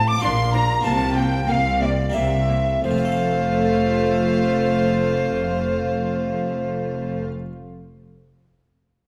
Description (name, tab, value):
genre	classical, baroque-style concerto movement with solo episodes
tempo	86-99 BPM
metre	3/4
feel	straight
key	F major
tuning	A4 = 444 Hz
part	alto recorder	melody	0.0-7.2 s	C5 to D6	-26 LUFS	equal	none
part	warm chamber violin section	melody	0.0-7.3 s	D5 to D6	-34 LUFS	equal	none
part	rich chamber violin section	second line	0.0-7.3 s	F4 to D6	-31 LUFS	equal	none
part	harpsichord	accompaniment	0.0-7.5 s	A2 to F5	-33 LUFS	equal	none
part	clear chamber double bass section	bass	0.0-7.3 s	F1 to C2	-29 LUFS	equal	none
part	rich chamber cello section	bass	0.0-7.3 s	F2 to C3	-29 LUFS	equal	none
part	rich chamber viola section	accompaniment	0.2-7.2 s	A3 to D4	-28 LUFS	equal	none
room	wet recital hall reverb, RT60 1.8 s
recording	none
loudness	-21 LUFS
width	mono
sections	0.0-2.8 A section; 2.8-7.0 B section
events	slowing down 0.0-2.8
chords	0.2 Bb; 0.8 C7sus4; 2.1 C7; 2.8 F